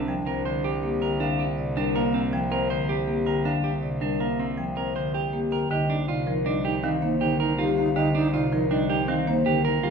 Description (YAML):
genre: classical, minimalist pattern music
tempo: 160 BPM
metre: 6/4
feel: straight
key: C minor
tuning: A4 = 443 Hz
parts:
  - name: hollow alto flute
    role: second line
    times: 0.0-1.0, 5.7-9.9 s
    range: D4 to Eb4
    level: -30 LUFS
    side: right 4 dB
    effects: none
  - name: clean electric guitar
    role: arpeggios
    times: 0.0-9.9 s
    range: C4 to C5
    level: -29 LUFS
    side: right 4 dB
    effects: none
  - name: rich cello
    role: bass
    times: 0.0-9.9 s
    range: C2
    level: -33 LUFS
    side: right 4 dB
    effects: none
  - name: vibraphone with soft mallets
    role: melody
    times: 0.1-9.9 s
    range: G4 to G5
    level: -29 LUFS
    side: left 5 dB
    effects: none
  - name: marimba with medium mallets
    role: accompaniment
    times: 0.1-9.9 s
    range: C3 to C4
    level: -27 LUFS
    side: left 1 dB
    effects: none
room: moderate recital hall reverb, RT60 1.6 s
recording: minimal, uncompressed stereo recording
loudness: -22 LUFS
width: side -6 dB against mid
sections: 0.0-5.7 A section; 5.7-9.9 B section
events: none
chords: 0.0 Bbadd9/C; 5.7 Cm9